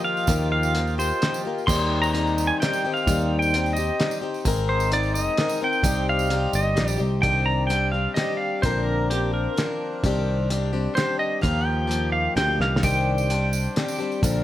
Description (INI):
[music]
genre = folk rock and heartland rock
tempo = 129 BPM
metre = 3/4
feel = straight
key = C minor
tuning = A4 = 440 Hz
[part]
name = pedal steel guitar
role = melody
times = 0.0-14.2 s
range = G4 to C6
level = -25 LUFS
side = right 1 dB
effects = none
[part]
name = picked plugged-in swing-style acoustic guitar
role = accompaniment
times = 0.0-14.4 s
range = Bb2 to Bb4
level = -27 LUFS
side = left 5 dB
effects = none
[part]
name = accordion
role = sustained chords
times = 0.0-14.4 s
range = D3 to C6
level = -36 LUFS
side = right 3 dB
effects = none
[part]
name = tambourine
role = percussion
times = 0.2-7.1, 12.8-14.3 s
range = none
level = -37 LUFS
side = right 7 dB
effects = none
[part]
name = picked electric bass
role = bass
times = 0.3-14.4 s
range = G1 to Eb2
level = -24 LUFS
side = right 1 dB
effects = none
[part]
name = cloth-damped thuddy drum kit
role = drums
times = 0.3-14.3 s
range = crash cymbal, hi-hat, kick drum, snare drum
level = -27 LUFS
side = equal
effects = none
[sound]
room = studio ambience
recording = none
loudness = -20 LUFS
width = side -13 dB against mid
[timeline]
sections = 0.0-7.2 A section; 7.2-14.4 B section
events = pedal steel guitar solo 7.2-14.4; drum fill 12.6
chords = 0.0 Ebadd9; 1.7 Cm/Eb; 4.5 Abadd9; 5.8 Cm; 7.2 Cmadd9; 8.6 Bbadd9; 10.0 Cmadd9; 11.4 Ebadd9; 12.8 Cmadd9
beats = | 0.27 0.74 1.20 | 1.67 2.13 2.60 | 3.06 3.52 3.99 | 4.45 4.92 5.38 | 5.84 6.31 6.77 | 7.24 7.70 8.17 | 8.63 9.10 9.56 | 10.03 10.50 10.96 | 11.43 11.90 12.36 | 12.83 13.30 13.76 | 14.23